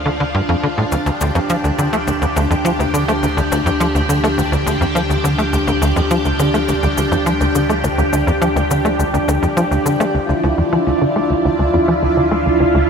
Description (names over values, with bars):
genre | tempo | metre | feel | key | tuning
ambient, sequencer-driven space music | 104 BPM | 4/4 | straight | D minor | A4 = 439 Hz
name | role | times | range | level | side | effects
string machine, full ensemble | sustained chords | 0.0-12.9 s | D4 to G4 | -18 LUFS | equal | ensemble chorus
analog drone | bass | 0.0-12.9 s | D2 | -26 LUFS | equal | chorus
bubbling stepped-filter texture | texture | 0.0-12.9 s | F3 to G5 | -26 LUFS | right 1 dB | chorus, built-in reverb
tight sequencer bass | riff | 0.1-12.9 s | D2 to A3 | -17 LUFS | equal | analog chorus, cassette tape, tape echo
percussion blips and shaker | percussion | 0.9-10.1 s | none | -29 LUFS | left 7 dB | tape echo
room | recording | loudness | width
moderate huge ambient reverb, RT60 7.6 s | none | -14 LUFS | side -6 dB against mid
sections
0.0-10.2 A section; 10.2-12.9 B section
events
filter sweep on analog synth bass 10.2-12.9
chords
0.0 Dm; 10.2 Dmadd9